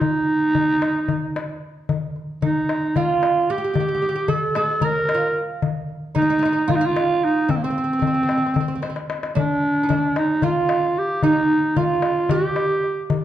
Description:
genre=Turkish makam ensemble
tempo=225 BPM (eighths)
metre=7/8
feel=straight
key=unclear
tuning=A4 = 439 Hz
part: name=growling clarinet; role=melody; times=0.0-13.1 s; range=Bb3 to Bb4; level=-20 LUFS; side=right 1 dB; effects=none
part: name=darbuka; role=percussion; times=0.0-13.2 s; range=none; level=-24 LUFS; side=left 5 dB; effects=none
part: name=oud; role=second line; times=2.4-13.1 s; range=C4 to Bb4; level=-25 LUFS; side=right 6 dB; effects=none
room=wet recital hall reverb, RT60 1.3 s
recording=dark, warm production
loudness=-18 LUFS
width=side -12 dB against mid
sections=0.0-9.4 A section; 9.4-13.2 B section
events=drum fill 8.8-9.4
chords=none

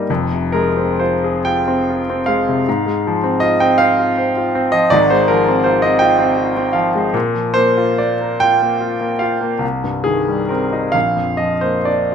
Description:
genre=classical, romantic nocturne for solo piano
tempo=40-57 BPM (dotted quarters)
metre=12/8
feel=rubato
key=unclear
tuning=A4 = 440 Hz
part: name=warm concert grand piano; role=solo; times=0.0-12.1 s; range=F1 to G5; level=-14 LUFS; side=equal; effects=none
room=moderate large studio reverb, RT60 0.8 s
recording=none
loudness=-14 LUFS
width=side -7 dB against mid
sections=0.0-12.1 A section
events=none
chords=0.1 Fm; 2.7 Fm/Ab; 7.1 Bb5; 9.6 Cm; 10.9 Bb

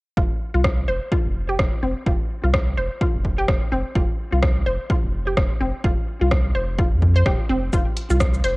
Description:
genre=minimal techno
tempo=127 BPM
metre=4/4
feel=swing 57% on 16ths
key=unclear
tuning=A4 = 439 Hz
part: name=resonant blip pluck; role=riff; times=0.2-8.5 s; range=C4 to C5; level=-26 LUFS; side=equal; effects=chorus, sidechain pumping, cassette tape, analog delay
part: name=round analog bass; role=bass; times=0.2-8.6 s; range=Eb1 to F2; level=-22 LUFS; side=equal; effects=sidechain pumping
part: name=electronic kick drum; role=drums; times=0.2-8.3 s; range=none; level=-22 LUFS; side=equal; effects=none
part: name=punchy analog drum machine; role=drums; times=0.6-8.5 s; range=cabasa, hi-hat, rim click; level=-27 LUFS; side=equal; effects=none
room=light reverb, digital ambience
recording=home recording on cassette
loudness=-18 LUFS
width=side -23 dB against mid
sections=0.2-8.6 A section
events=none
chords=0.2 F5

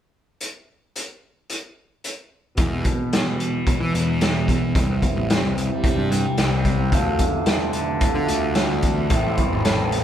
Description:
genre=psychedelic rock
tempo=110 BPM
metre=4/4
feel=straight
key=unclear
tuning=A4 = 440 Hz
part: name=raw garage drum kit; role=drums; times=0.4-10.0 s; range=hi-hat, kick drum, snare drum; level=-22 LUFS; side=equal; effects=none
part: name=tanpura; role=drone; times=2.5-10.0 s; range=E2 to G3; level=-29 LUFS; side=equal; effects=none
part: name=cranked stack guitar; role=riff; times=2.6-10.0 s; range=E2 to F4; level=-23 LUFS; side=equal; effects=overdrive, phaser, low-pass filter
part: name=fuzz picked electric bass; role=bass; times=2.6-10.0 s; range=G#1 to E3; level=-25 LUFS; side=equal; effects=overdrive
room=moderate stone room reverb, RT60 1.1 s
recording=band playing live in one room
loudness=-18 LUFS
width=side -10 dB against mid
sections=0.4-2.6 A section; 2.6-10.0 B section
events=filter sweep on overdriven electric guitar 2.6-10.0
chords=0.4 N.C.; 2.6 E; 4.8 C; 6.9 Dm7; 9.1 Am

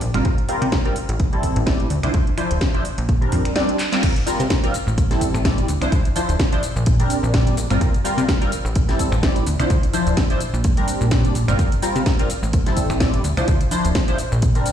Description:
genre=filtered disco house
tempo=127 BPM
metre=4/4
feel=swing 56% on 16ths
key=C mixolydian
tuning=A4 = 440 Hz
part: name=plucky analog bass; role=bass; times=0.0-14.6 s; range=D1 to C3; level=-22 LUFS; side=equal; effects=tube saturation, sidechain pumping, low-pass filter
part: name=house drum kit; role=drums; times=0.0-14.7 s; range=crash cymbal, finger snaps, handclaps, hi-hat, shaker, snare drum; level=-26 LUFS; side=equal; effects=sidechain pumping on hats, studio reverb, sidechain pumping on cymbals, sidechain pumping on perc
part: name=funky polysynth comp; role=accompaniment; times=0.1-14.7 s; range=F3 to D5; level=-23 LUFS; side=equal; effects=chorus, phaser, sidechain pumping, low-pass filter
part: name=electronic kick drum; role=drums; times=0.3-14.5 s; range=none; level=-20 LUFS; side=equal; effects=studio reverb
room=light reverb, digital ambience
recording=played on a big sound system in a bare room, large studio reverb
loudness=-17 LUFS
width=side -9 dB against mid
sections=0.0-4.0 A section; 4.0-14.7 B section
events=drum fill 3.8; band accent 3.9; drop 4.0-14.7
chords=0.3 C7sus4; 1.0 Am7; 1.9 Dm9; 2.9 Bb69; 4.0 C7sus4; 4.7 Am7; 5.7 Dm9; 6.6 Bb69; 7.8 C7sus4; 8.5 Am7; 9.5 Dm9; 10.4 Bb69; 11.6 C7sus4; 12.3 Am7; 13.2 Dm9; 14.2 Bb69

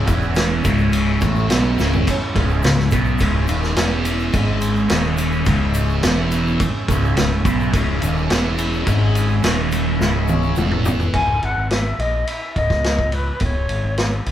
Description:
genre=psychedelic rock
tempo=106 BPM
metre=4/4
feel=straight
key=C# minor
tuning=A4 = 440 Hz
part: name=combo organ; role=sustained chords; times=0.0-11.1 s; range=G#3 to E5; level=-29 LUFS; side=right 4 dB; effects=none
part: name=thick fuzz guitar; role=riff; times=0.0-11.1 s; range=C#2 to B3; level=-20 LUFS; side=equal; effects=distortion, phaser
part: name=growling picked electric bass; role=bass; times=0.0-14.3 s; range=C#1 to C#2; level=-21 LUFS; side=equal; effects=overdrive
part: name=vintage drum kit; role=drums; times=0.1-14.3 s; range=crash cymbal, kick drum, ride cymbal, snare drum, toms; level=-21 LUFS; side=equal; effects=none
part: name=egg shaker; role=percussion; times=0.1-11.1 s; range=none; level=-40 LUFS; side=left 5 dB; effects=none
part: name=silver concert flute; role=melody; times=11.1-14.2 s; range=B4 to G#5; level=-23 LUFS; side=left 2 dB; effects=none
room=moderate studio reverb, RT60 0.7 s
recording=band playing live in one room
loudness=-16 LUFS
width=side -11 dB against mid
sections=0.0-11.1 A section; 11.1-14.3 B section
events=drum fill 1.8, 10.0-11.1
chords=0.0 C#m; 11.1 C#5

